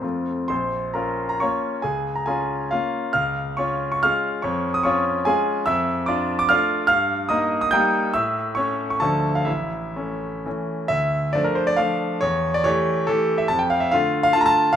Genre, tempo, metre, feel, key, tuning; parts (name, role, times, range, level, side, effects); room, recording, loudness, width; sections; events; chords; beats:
classical, romantic triple-time dance for piano with dotted rhythms; 117-158 BPM; 3/4; rubato; Bb minor, D minor from 5.7 s; A4 = 440 Hz
bright concert grand piano; solo; 0.0-14.8 s; A1 to G6; -19 LUFS; equal
moderate recital hall reverb, RT60 1.6 s; minimal, uncompressed stereo recording; -19 LUFS; side -9 dB against mid
0.5-10.9 A section; 10.9-14.8 B section
0.0 F; 0.5 Bbm; 1.8 Bbm/Db; 3.1 Db; 4.4 Db/F; 5.7 Dm/F; 6.9 Eb/G; 8.2 A; 9.0 Dm; 9.5 A; 10.9 Dm; 12.2 A7/E; 13.5 Dm/F
0.03 | 0.51 0.96 1.42 | 1.84 2.27 2.71 | 3.14 3.58 4.03 | 4.44 4.86 5.28 | 5.68 6.09 6.50 | 6.89 7.30 7.74 | 8.15 8.58 9.03 | 9.48 9.96 10.46 | 10.91 11.35 11.80 | 12.23 12.67 13.10 | 13.51 13.93 14.35 | 14.75